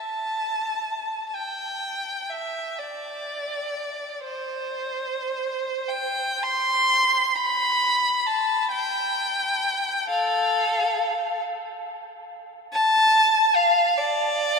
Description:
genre	classical, free, expressive piece for unaccompanied violin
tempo	22-48 BPM (dotted quarters)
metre	6/8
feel	rubato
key	C major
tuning	A4 = 440 Hz
part	rich violin	solo	0.0-14.6 s	A4 to C6	-22 LUFS	equal	none
room	wet cathedral reverb, RT60 6.0 s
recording	in a vast, echoing space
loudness	-21 LUFS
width	side -4 dB against mid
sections	0.0-1.4 A section; 1.4-14.6 B section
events	none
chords	none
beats	| 1.35 2.81 | 4.25 5.89 | 7.38 8.73 | 10.11 11.45 | 12.73 14.00

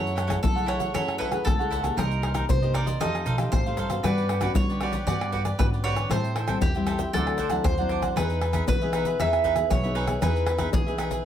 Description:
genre	samba and choro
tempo	116 BPM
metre	4/4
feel	straight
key	unclear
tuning	A4 = 440 Hz
part	mandolin	second line	0.0-11.2 s	G4 to E5	-29 LUFS	equal	none
part	cavaquinho	accompaniment	0.0-11.2 s	D4 to G5	-31 LUFS	right 4 dB	none
part	nylon-string guitar	accompaniment	0.0-11.2 s	G2 to G#4	-32 LUFS	left 4 dB	none
part	upright bass	bass	0.0-11.2 s	B1 to G3	-28 LUFS	right 1 dB	none
part	egg shaker, pandeiro, tamborim and surdo	percussion	0.1-11.2 s	none	-27 LUFS	left 1 dB	none
room	light reverb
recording	close, detailed microphones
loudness	-22 LUFS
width	side -10 dB against mid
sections	0.0-11.2 A section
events	none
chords	0.0 F#m9; 2.0 Cm7; 3.0 F9; 4.0 Gmaj7#11; 6.1 Am7; 7.1 D9; 8.2 Emaj7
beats	0.43 0.95 1.46 | 1.98 2.49 3.01 3.52 | 4.04 4.55 5.07 5.58 | 6.10 6.61 7.13 7.64 | 8.16 8.68 9.19 9.71 | 10.22 10.74

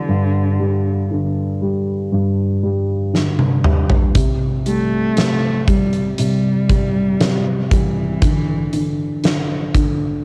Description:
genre	pop ballad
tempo	59 BPM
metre	4/4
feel	straight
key	C major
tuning	A4 = 440 Hz
part	warm cello	melody	0.0-9.2 s	D3 to A3	-24 LUFS	equal	cassette tape
part	dark upright piano	accompaniment	0.0-10.2 s	G2 to G3	-21 LUFS	equal	cassette tape
part	huge arena drum kit	drums	3.1-10.0 s	hi-hat, kick drum, snare drum, toms	-20 LUFS	equal	cassette tape
room	light reverb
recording	home recording on cassette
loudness	-18 LUFS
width	mono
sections	0.0-10.2 A section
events	drum fill 3.1-4.2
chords	0.1 G5; 4.2 C5; 8.2 N.C.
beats	| 0.09 1.10 2.12 3.14 | 4.15 5.17 6.19 7.20 | 8.22 9.24

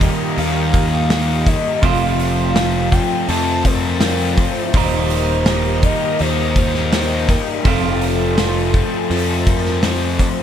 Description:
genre	rock, shoegaze and dream pop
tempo	82 BPM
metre	4/4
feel	straight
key	unclear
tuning	A4 = 442 Hz
part	soft string machine	sustained chords	0.0-10.4 s	F4 to Bb5	-29 LUFS	equal	ensemble chorus
part	overdriven electric guitar	riff	0.0-10.4 s	Eb2 to F4	-23 LUFS	right 11 dB	reverse reverb
part	raw garage guitar	riff	0.0-10.4 s	Eb2 to F4	-22 LUFS	left 10 dB	overdrive, lush chorus
part	fuzz picked electric bass	bass	0.0-10.3 s	Eb1 to F2	-20 LUFS	equal	overdrive
part	loose indie drum kit	drums	0.0-10.4 s	hi-hat, kick drum, snare drum	-19 LUFS	equal	none
part	warm velvety synth lead	melody	0.4-10.4 s	A4 to A5	-24 LUFS	equal	chorus, analog delay
room	moderate booth ambience, RT60 0.2 s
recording	none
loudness	-14 LUFS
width	side -9 dB against mid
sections	0.0-10.4 A section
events	none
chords	0.0 Eb; 1.8 F; 4.7 Eb; 7.6 F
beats	0.37 1.10 | 1.83 2.56 3.28 4.01 | 4.74 5.46 6.19 6.92 | 7.65 8.37 9.10 9.83

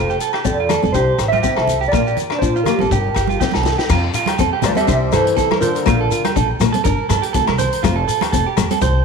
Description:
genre	highlife guitar band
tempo	122 BPM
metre	4/4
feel	swing 54% on 16ths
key	F major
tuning	A4 = 436 Hz
part	mellow electric guitar	melody	0.0-6.3 s	F4 to E5	-19 LUFS	equal	ensemble chorus
part	fingerpicked steel-string acoustic guitar	accompaniment	0.0-8.8 s	F3 to D4	-23 LUFS	left 12 dB	none
part	clean electric guitar	arpeggios	0.0-9.0 s	D4 to C5	-21 LUFS	right 10 dB	spring reverb, tape echo
part	upright bass	bass	0.0-9.0 s	F1 to Bb2	-21 LUFS	equal	none
part	shekere	percussion	0.1-8.9 s	none	-29 LUFS	left 8 dB	none
part	vintage drum kit	drums	0.2-8.9 s	crash cymbal, hi-hat, kick drum, rim click, snare drum	-24 LUFS	left 4 dB	none
part	agogo bells	percussion	0.3-8.7 s	none	-28 LUFS	left 15 dB	none
part	congas	percussion	0.7-8.8 s	none	-26 LUFS	right 12 dB	none
part	growling alto saxophone	second line	4.7-6.3 s	D3 to G3	-24 LUFS	left 12 dB	none
room	moderate echo chamber reverb, RT60 1.5 s, studio reverb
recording	1960s-style stereo with parts hard left and right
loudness	-14 LUFS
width	side -5 dB against mid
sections	0.0-3.9 A section; 3.9-9.0 B section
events	drum fill 3.4-3.9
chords	0.0 F; 0.9 C; 1.9 Bb; 2.9 Gm; 3.9 F; 4.9 C; 5.9 Bb; 6.8 Gm; 7.8 F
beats	0.45 0.94 1.44 | 1.93 2.42 2.91 3.40 | 3.90 4.39 4.88 5.37 | 5.87 6.36 6.85 7.34 | 7.83 8.32 8.82

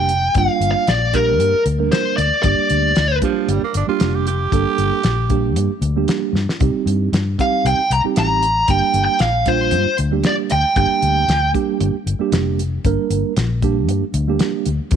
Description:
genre	straight-eighth soul blues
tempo	115 BPM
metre	4/4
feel	straight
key	G minor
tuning	A4 = 440 Hz
part	smooth overdriven lead guitar	melody	0.0-3.2, 7.4-11.5 s	Bb4 to Bb5	-17 LUFS	equal	none
part	mellow tine electric piano	accompaniment	0.0-15.0 s	G3 to Bb4	-22 LUFS	right 11 dB	medium stereo tremolo
part	vintage muted fingered electric bass	bass	0.0-15.0 s	F1 to G2	-20 LUFS	left 2 dB	none
part	damped 70s drum kit	drums	0.1-15.0 s	hi-hat, kick drum, snare drum	-21 LUFS	left 2 dB	none
part	growling tenor saxophone	second line	3.2-5.8 s	F3 to G4	-23 LUFS	right 8 dB	none
room	light reverb, small room ambience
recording	1960s-style stereo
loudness	-15 LUFS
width	side -8 dB against mid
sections	0.0-15.0 A section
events	drum fill 6.3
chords	0.0 Gm; 6.6 Cm; 8.7 Gm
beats	| 0.35 0.87 1.40 1.92 | 2.44 2.96 3.48 4.00 | 4.52 5.04 5.56 6.08 | 6.60 7.12 7.64 8.16 | 8.68 9.20 9.72 10.24 | 10.76 11.28 11.80 12.32 | 12.84 13.36 13.88 14.40 | 14.92

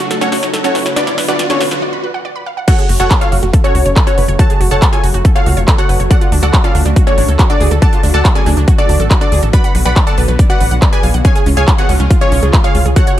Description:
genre	uplifting trance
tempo	140 BPM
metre	4/4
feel	straight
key	F# harmonic minor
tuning	A4 = 440 Hz
part	lush unison pad	sustained chords	0.0-13.2 s	C#3 to F#4	-24 LUFS	equal	chorus, phaser, vintage 12-bit sampler grit, sidechain pumping
part	wide unison pluck	arpeggios	0.0-13.1 s	B3 to B5	-22 LUFS	right 4 dB	sidechain pumping, ping-pong delay
part	tight sequencer bass	bass	0.0-12.9 s	F#1 to D2	-14 LUFS	equal	sidechain pumping, high-pass filter
part	big-room dance drum kit	drums	0.0-13.2 s	crash cymbal, handclaps, hi-hat, snare drum	-20 LUFS	equal	overdrive, high-pass filter on snare, sidechain pumping on hats, high-pass filter on hats, sidechain pumping on cymbals, high-pass filter on cymbals
part	riser	sound effects	0.0-1.8 s	none	-21 LUFS	equal	none
part	wide unison pluck	melody	0.2-13.2 s	C#4 to B5	-19 LUFS	equal	sidechain pumping, tape echo
part	plucky unison lead	second line	0.2-13.2 s	C#5 to B5	-21 LUFS	left 1 dB	sidechain pumping, ping-pong delay
part	electronic kick drum	drums	2.7-13.0 s	none	-11 LUFS	equal	overdrive
room	light reverb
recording	none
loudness	-9 LUFS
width	side -12 dB against mid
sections	0.0-2.7 A section; 2.7-13.2 B section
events	build-up 0.0-2.7; drum fill 0.0-1.8; riser 0.0-1.8; break 1.8-2.7; drop 2.7-13.2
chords	0.0 F#m; 1.0 Bm; 2.7 F#m; 6.1 D; 9.5 Bm; 11.2 C#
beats	0.11 0.53 | 0.96 1.39 1.82 2.25 | 2.68 3.11 3.53 3.96 | 4.39 4.82 5.25 5.68 | 6.11 6.53 6.96 7.39 | 7.82 8.25 8.68 9.11 | 9.53 9.96 10.39 10.82 | 11.25 11.68 12.11 12.53 | 12.96

